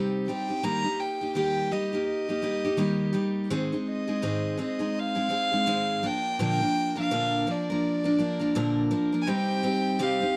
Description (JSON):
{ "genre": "acoustic pop", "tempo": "83 BPM", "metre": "4/4", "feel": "swing 60% on 16ths", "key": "C minor", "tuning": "A4 = 440 Hz", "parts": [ { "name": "picked steel-string acoustic guitar", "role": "accompaniment", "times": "0.0-10.4 s", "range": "Ab2 to Bb4", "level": "-29 LUFS", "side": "equal", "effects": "none" }, { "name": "warm violin", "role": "melody", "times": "0.3-10.4 s", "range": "D5 to Bb5", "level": "-32 LUFS", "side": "equal", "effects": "none" }, { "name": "percussive tonewheel organ", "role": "sustained chords", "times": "9.3-10.4 s", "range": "C4 to G4", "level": "-38 LUFS", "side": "equal", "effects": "none" } ], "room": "light reverb", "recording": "dark, warm production", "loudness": "-27 LUFS", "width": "mono", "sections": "0.0-9.3 A section; 9.3-10.4 B section", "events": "none", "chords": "0.0 Cm; 0.6 Eb; 3.5 Ab; 6.0 Bb; 9.3 Cm" }